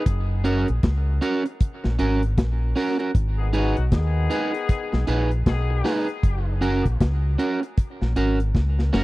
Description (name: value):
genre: dub reggae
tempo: 78 BPM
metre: 4/4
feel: swing 61% on 16ths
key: unclear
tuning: A4 = 440 Hz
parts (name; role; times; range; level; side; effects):
- electric guitar at the edge of break-up; accompaniment; 0.0-9.0 s; C#4 to B4; -26 LUFS; right 2 dB; dub echo
- deep dub fingered electric bass; bass; 0.1-9.0 s; F#1 to D#2; -22 LUFS; equal; none
- deep reggae drum kit; drums; 0.1-9.0 s; hi-hat, kick drum, snare drum; -21 LUFS; equal; none
- bright trombone section; second line; 3.4-6.0 s; D#3 to G#4; -32 LUFS; left 6 dB; dub echo
room: little or no reverb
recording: dry, close 1970s-style studio recording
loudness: -20 LUFS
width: side -19 dB against mid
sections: 0.0-9.0 A section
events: drum fill 8.5-9.0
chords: 0.1 F#; 3.1 G#m; 6.2 F#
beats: | 0.06 0.83 1.60 2.37 | 3.15 3.92 4.69 5.46 | 6.23 7.00 7.77 8.54